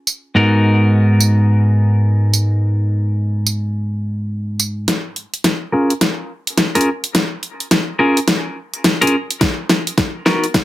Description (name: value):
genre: glitch hop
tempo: 106 BPM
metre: 4/4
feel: swing 62% on 16ths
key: Bb phrygian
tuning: A4 = 441 Hz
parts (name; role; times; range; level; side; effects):
- clean electric guitar; stabs; 0.0-10.4 s; Ab2 to Bb4; -14 LUFS; equal; sidechain pumping, low-pass filter
- dubstep drum kit; drums; 0.1-10.6 s; hi-hat, snare drum, tambourine; -16 LUFS; equal; overdrive
- electronic kick drum; drums; 9.4-10.6 s; none; -19 LUFS; equal; overdrive
room: moderate small room reverb, RT60 0.6 s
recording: high-pass filter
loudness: -14 LUFS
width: side -16 dB against mid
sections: 0.0-4.9 A section; 4.9-10.6 B section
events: build-up 4.9-10.6; drum fill 4.9-10.6; filter sweep on clean electric guitar 4.9-10.6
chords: 0.4 Abm9; 4.9 Bbm7; 9.4 Bmaj7